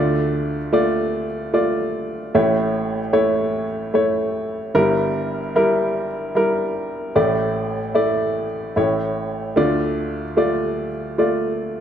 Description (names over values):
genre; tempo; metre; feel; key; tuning
folk; 75 BPM; 3/4; straight; D minor; A4 = 440 Hz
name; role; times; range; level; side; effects
warm upright piano; solo; 0.0-11.8 s; G1 to D5; -18 LUFS; equal; none
room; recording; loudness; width
moderate concert hall reverb, RT60 2.0 s; none; -18 LUFS; side -9 dB against mid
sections
0.0-11.8 A section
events
none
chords
0.0 Dm; 2.4 A; 4.8 Edim/G; 7.2 Asus4; 8.8 A; 9.6 Dm